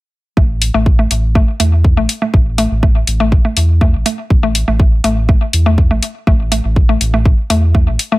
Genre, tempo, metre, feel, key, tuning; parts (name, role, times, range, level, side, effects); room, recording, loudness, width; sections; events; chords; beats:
minimal techno; 122 BPM; 4/4; straight; A4 = 440 Hz
mallet-like synth pluck; riff; 0.4-8.2 s; A3; -18 LUFS; left 1 dB; chorus, sidechain pumping, digital delay
round analog bass; bass; 0.4-8.0 s; A1 to E2; -14 LUFS; equal; tube saturation, sidechain pumping
electronic kick drum; drums; 0.4-7.8 s; -11 LUFS; equal
electronic hi-hat; drums; 0.6-8.1 s; -17 LUFS; left 2 dB
little or no reverb; -11 LUFS; side -19 dB against mid
0.4-8.2 A section
0.4 A5
| 0.37 0.86 1.35 1.84 | 2.34 2.83 3.32 3.81 | 4.30 4.80 5.29 5.78 | 6.27 6.76 7.25 7.75